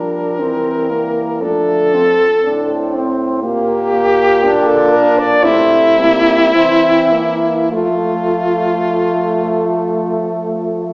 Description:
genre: classical, lyrical piece for horn quartet.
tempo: 49-60 BPM.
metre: 4/4.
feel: rubato.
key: F major.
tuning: A4 = 441 Hz.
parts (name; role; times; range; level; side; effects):
warm French horn; melody; 0.0-10.9 s; E4 to D5; -13 LUFS; equal; none.
mellow French horn; second line; 0.0-10.9 s; G3 to C4; -22 LUFS; right 1 dB; none.
mellow French horn; accompaniment; 0.0-10.9 s; A3 to D4; -18 LUFS; equal; none.
dark French horn; bass; 0.0-10.9 s; A2 to F3; -21 LUFS; equal; none.
room: wet recital hall reverb, RT60 1.6 s.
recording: recorded in a church or concert hall, small speaker sound.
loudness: -11 LUFS.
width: side -27 dB against mid.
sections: 0.0-10.9 A section.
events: none.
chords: 0.0 Edim; 1.4 F; 3.4 Gm/Bb; 5.5 C7; 7.7 F.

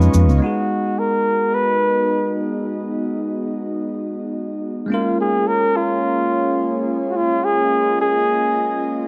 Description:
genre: chillout.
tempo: free time.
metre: none.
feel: none.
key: G# dorian.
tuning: A4 = 436 Hz.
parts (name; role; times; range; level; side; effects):
bell-like tine electric piano; accompaniment; 0.0-9.1 s; G#3 to B4; -27 LUFS; equal; digital delay.
airy breathy pad; sustained chords; 0.0-9.1 s; A#3 to C#6; -27 LUFS; equal; chorus.
mellow flugelhorn; melody; 0.4-9.1 s; E#4 to B4; -21 LUFS; equal; tape echo.
room: moderate plate reverb, RT60 1.9 s.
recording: worn, warbling old tape, cassette tape, warbly pitch drift.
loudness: -20 LUFS.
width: mono.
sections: 0.4-9.1 A section.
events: filter sweep on analog synth pad 0.4-9.1.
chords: 0.4 G#m7; 4.9 A#m7.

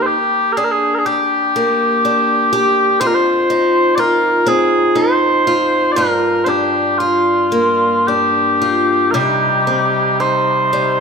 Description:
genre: celtic folk, Celtic slow air.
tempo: 55-62 BPM.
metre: 3/4.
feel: rubato.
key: unclear.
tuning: A4 = 440 Hz.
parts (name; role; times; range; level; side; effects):
mellow small bagpipes; melody; 0.0-11.0 s; F4 to D5; -14 LUFS; equal; none.
picked old ladder-braced acoustic guitar; accompaniment; 0.0-11.0 s; F2 to G4; -17 LUFS; left 1 dB; none.
chamber organ, soft reed; sustained chords; 9.1-11.0 s; C3 to Eb4; -21 LUFS; right 1 dB; none.
room: moderate scoring stage reverb, RT60 1.9 s.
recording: minimal, uncompressed stereo recording.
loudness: -12 LUFS.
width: side -5 dB against mid.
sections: 0.0-11.0 A section.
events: none.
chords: 0.1 Gm; 3.0 F5; 6.0 Gm7; 9.1 Cm.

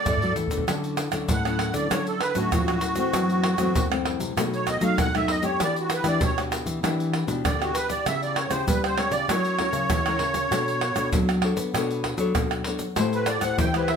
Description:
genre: samba and choro.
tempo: 98 BPM.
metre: 4/4.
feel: straight.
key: D major.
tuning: A4 = 439 Hz.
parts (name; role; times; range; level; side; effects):
musette accordion; melody; 0.0-14.0 s; F#4 to G5; -26 LUFS; right 3 dB; none.
rich viola; second line; 0.0-0.6 s; A4; -38 LUFS; equal; none.
nylon-string guitar; accompaniment; 0.0-14.0 s; F#2 to C#5; -29 LUFS; left 5 dB; none.
nylon-string guitar; bass; 0.1-14.0 s; A2 to C4; -28 LUFS; equal; none.
surdo, egg shaker, pandeiro and tamborim; percussion; 0.1-14.0 s; none; -26 LUFS; right 1 dB; none.
room: moderate studio reverb, RT60 0.8 s.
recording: none.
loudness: -22 LUFS.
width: side -6 dB against mid.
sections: 0.7-14.0 A section.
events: drum fill 0.0-0.7; accordion solo 0.7-14.0.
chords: 0.0 Dmaj7; 0.7 Dmaj9; 3.1 F#m7b5; 4.4 B7; 5.6 Em7; 8.1 C#m7b5; 9.3 F#7; 10.5 Bm9; 13.0 Am7.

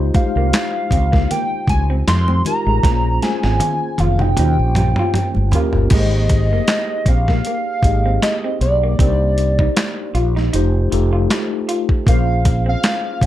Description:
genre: R&B, neo-soul.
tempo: 78 BPM.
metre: 4/4.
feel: swing 54% on 16ths.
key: Ab major.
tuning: A4 = 440 Hz.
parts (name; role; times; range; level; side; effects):
mellow tine electric piano; accompaniment; 0.0-13.3 s; Ab3 to Eb5; -24 LUFS; left 2 dB; medium stereo tremolo.
mellow fretless electric bass; bass; 0.0-13.3 s; F1 to F2; -17 LUFS; equal; none.
dusty soul sampler-style drum kit; drums; 0.1-13.3 s; crash cymbal, handclaps, hi-hat, kick drum, snare drum, toms; -18 LUFS; equal; none.
congas; percussion; 0.1-5.7 s; none; -29 LUFS; left 2 dB; none.
hollow square lead; melody; 0.2-13.3 s; D5 to C6; -21 LUFS; right 1 dB; chorus, plate reverb.
electric guitar through a small old amp; second line; 0.2-13.3 s; Ab3 to F4; -26 LUFS; equal; none.
room: light reverb.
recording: dark, warm production.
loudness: -14 LUFS.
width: side -13 dB against mid.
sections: 0.0-5.9 A section; 5.9-13.3 B section.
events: drum fill 2.8-5.9.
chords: 0.0 Dbmaj9#11; 2.8 Bbm9; 4.4 Eb13 (rootless); 5.9 Abmaj9; 9.0 Cm9; 10.5 F7; 12.1 Bbm9.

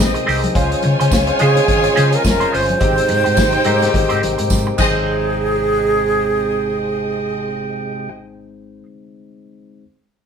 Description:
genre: disco.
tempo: 106 BPM.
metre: 4/4.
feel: swing 56% on 16ths.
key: Ab major.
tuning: A4 = 440 Hz.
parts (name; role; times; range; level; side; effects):
breathy alto flute; melody; 0.0-8.1 s; Ab4 to C5; -18 LUFS; right 3 dB; none.
warm studio violin section; second line; 0.0-8.1 s; C4 to Ab5; -22 LUFS; left 1 dB; none.
barky tine electric piano; accompaniment; 0.0-9.9 s; Ab3 to Eb5; -25 LUFS; left 6 dB; overdrive.
tonewheel organ; sustained chords; 0.0-8.1 s; C3 to G5; -25 LUFS; right 3 dB; stopped rotary speaker.
hollow-body short-scale fingered electric bass; bass; 0.0-8.8 s; F1 to Db3; -21 LUFS; left 1 dB; none.
vintage drum kit; drums; 0.0-4.9 s; crash cymbal, hi-hat, kick drum, snare drum; -21 LUFS; equal; none.
congas; percussion; 0.0-5.3 s; none; -27 LUFS; left 2 dB; none.
clean electric guitar; accompaniment; 0.1-8.9 s; Ab3 to C5; -25 LUFS; right 2 dB; wah.
tambourine; percussion; 1.1-5.3 s; none; -29 LUFS; right 6 dB; none.
room: moderate studio reverb, RT60 0.8 s.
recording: band playing live in one room.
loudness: -14 LUFS.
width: side -7 dB against mid.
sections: 0.0-5.1 A section; 5.1-7.3 B section.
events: drum fill 4.5-5.1.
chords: 0.0 Abmaj7; 0.5 Dbmaj7; 2.8 Abmaj7.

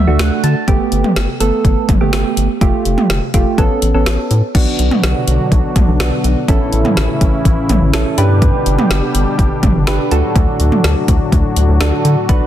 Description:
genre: synth-pop.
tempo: 124 BPM.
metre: 4/4.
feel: straight.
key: D major.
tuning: A4 = 440 Hz.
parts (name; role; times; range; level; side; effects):
soft electric-piano-like synth keys; accompaniment; 0.0-12.5 s; A3 to A5; -18 LUFS; right 3 dB; chorus.
rubbery square bass; bass; 0.0-12.4 s; F1 to D3; -15 LUFS; equal; none.
deep house drum kit; drums; 0.2-12.4 s; crash cymbal, hi-hat, kick drum, snare drum, toms; -15 LUFS; equal; none.
warm analog pad; sustained chords; 4.5-12.5 s; A2 to G4; -18 LUFS; left 1 dB; chorus.
room: light reverb.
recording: dense, heavily limited modern master.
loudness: -11 LUFS.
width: side -12 dB against mid.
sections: 0.0-4.5 A section; 4.5-12.5 B section.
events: synth keys fill 0.0-0.7.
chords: 0.0 D; 0.7 Gadd9; 2.6 Fadd9; 3.6 Aadd9; 4.5 Bm; 6.5 A; 8.2 G; 10.1 D.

